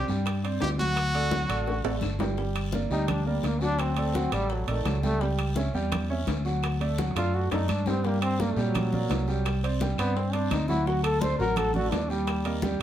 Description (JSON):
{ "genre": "latin, salsa", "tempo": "170 BPM", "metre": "4/4", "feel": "straight", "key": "G harmonic minor", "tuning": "A4 = 439 Hz", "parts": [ { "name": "bright trumpet", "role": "melody", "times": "0.0-2.0 s", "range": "F#4 to G4", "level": "-30 LUFS", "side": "equal", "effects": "none" }, { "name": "clear grand piano", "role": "accompaniment", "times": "0.0-12.8 s", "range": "F#3 to G5", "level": "-31 LUFS", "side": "right 2 dB", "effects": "none" }, { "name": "fingered electric bass", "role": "bass", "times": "0.1-12.8 s", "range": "G1 to Bb2", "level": "-28 LUFS", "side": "equal", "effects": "none" }, { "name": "bongos", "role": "percussion", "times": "0.1-12.8 s", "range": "none", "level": "-38 LUFS", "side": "left 6 dB", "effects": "none" }, { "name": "congas", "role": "percussion", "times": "0.1-12.8 s", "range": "none", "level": "-35 LUFS", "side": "left 1 dB", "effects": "none" }, { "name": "guiro", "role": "percussion", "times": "0.1-12.8 s", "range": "none", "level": "-44 LUFS", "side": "left 3 dB", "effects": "none" }, { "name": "claves", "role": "percussion", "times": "0.3-12.5 s", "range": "none", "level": "-43 LUFS", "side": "left 7 dB", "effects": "none" }, { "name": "timbales", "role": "percussion", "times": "0.3-12.6 s", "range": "none", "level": "-36 LUFS", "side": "right 5 dB", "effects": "none" }, { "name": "bright trombone", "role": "melody", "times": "2.9-12.6 s", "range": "Eb3 to C5", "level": "-30 LUFS", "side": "equal", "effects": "none" } ], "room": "wet studio reverb, RT60 0.8 s", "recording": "heard from further back in the room", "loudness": "-24 LUFS", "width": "side -11 dB against mid", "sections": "0.0-2.4 A section; 2.4-12.8 B section", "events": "drum fill 1.7-2.4, 7.0-8.0; trombone solo 2.4-12.8", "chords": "0.0 Csus2; 1.0 D; 2.4 Gm; 3.8 D; 5.2 Em13; 6.6 D; 8.0 Gm; 9.5 Csus2; 10.9 D; 12.3 Eb" }